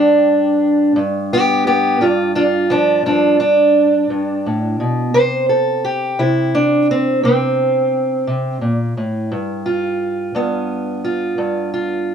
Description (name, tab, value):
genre	acoustic country blues, solo or duo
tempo	58 BPM (dotted quarters)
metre	12/8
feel	straight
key	G mixolydian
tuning	A4 = 440 Hz
part	fingerpicked steel-string acoustic guitar	solo	0.0-12.1 s	G2 to C5	-14 LUFS	right 1 dB	none
room	wet small room reverb, RT60 0.5 s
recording	none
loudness	-14 LUFS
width	side -7 dB against mid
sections	1.0-12.1 A section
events	steel-string acoustic guitar solo 1.0-12.1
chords	0.0 G5; 1.0 G7; 5.1 Am; 9.3 G7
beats	| 0.97 2.01 3.06 4.10 | 5.14 6.18 7.22 8.27 | 9.31 10.35 11.39